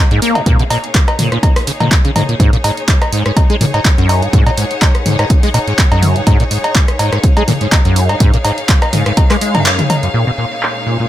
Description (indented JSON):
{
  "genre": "acid house",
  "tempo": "124 BPM",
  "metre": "4/4",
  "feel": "swing 55% on 16ths",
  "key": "unclear",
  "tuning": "A4 = 440 Hz",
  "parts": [
    { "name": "clear studio string section", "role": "texture", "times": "0.0-11.1 s", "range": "Bb3 to Gb5", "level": "-22 LUFS", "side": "left 1 dB", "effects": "sidechain pumping" },
    { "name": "liquid acid bass", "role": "riff", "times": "0.1-11.1 s", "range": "Gb2 to Bb3", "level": "-15 LUFS", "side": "equal", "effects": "overdrive, ensemble chorus, dub echo" },
    { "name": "punchy analog drum machine", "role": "drums", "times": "0.1-11.1 s", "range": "cowbell, handclaps, hi-hat, rim click, toms", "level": "-16 LUFS", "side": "equal", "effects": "low-pass filter on hats, low-pass filter on perc, low-pass filter on snare, low-pass filter on toms, low-pass filter on room" },
    { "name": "electronic kick drum", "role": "drums", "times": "0.5-9.3 s", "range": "none", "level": "-11 LUFS", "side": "equal", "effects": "none" },
    { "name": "warbly tape-like pad", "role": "sustained chords", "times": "10.1-11.1 s", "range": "Bb2 to Db4", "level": "-30 LUFS", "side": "left 2 dB", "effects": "none" }
  ],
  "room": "light reverb",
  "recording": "none",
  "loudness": "-10 LUFS",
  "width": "side -13 dB against mid",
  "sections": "0.0-10.1 A section",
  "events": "fade-in on string section 0.0-10.1; kick drops out 9.7-10.1; band accent 9.7",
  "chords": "0.0 Bbm7; 2.4 Ab5; 10.1 Bbm7"
}